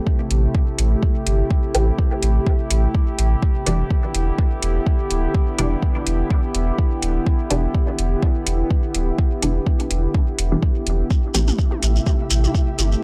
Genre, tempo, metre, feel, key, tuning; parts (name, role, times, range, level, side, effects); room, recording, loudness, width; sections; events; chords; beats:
dub techno; 125 BPM; 4/4; swing 56% on 16ths; A minor; A4 = 440 Hz
warbly tape-like pad; sustained chords; 0.0-13.0 s; C3 to G4; -28 LUFS; equal; chorus, built-in reverb, sidechain pumping
electronic kick drum; drums; 0.1-12.7 s; -21 LUFS; equal
soft dub sub bass; bass; 0.3-13.0 s; D1 to A1; -21 LUFS; equal; sidechain pumping
electronic hi-hat; drums; 0.3-12.9 s; -27 LUFS; equal
filtered dub chord stab; stabs; 1.7-11.5 s; B2 to G4; -29 LUFS; equal; phaser, sidechain pumping, dub echo
shekere; percussion; 11.1-13.0 s; -29 LUFS; equal
flickering grainy texture; texture; 11.5-13.0 s; E4 to E5; -35 LUFS; equal; built-in reverb, sidechain pumping
electronic toms; percussion; 11.3-12.9 s; -34 LUFS; equal; overdrive, sidechain pumping on toms, dub echo
little or no reverb; dry, gritty hardware recording; -20 LUFS; mono
0.0-13.0 A section
filter sweep on synth stab 0.0-13.0
0.0 Am7; 3.4 Em7; 11.1 Am7
0.07 0.55 1.03 | 1.51 1.99 2.47 2.95 | 3.43 3.91 4.39 4.87 | 5.35 5.83 6.31 6.79 | 7.27 7.75 8.23 8.71 | 9.19 9.67 10.15 10.63 | 11.11 11.59 12.07 12.55 | 13.03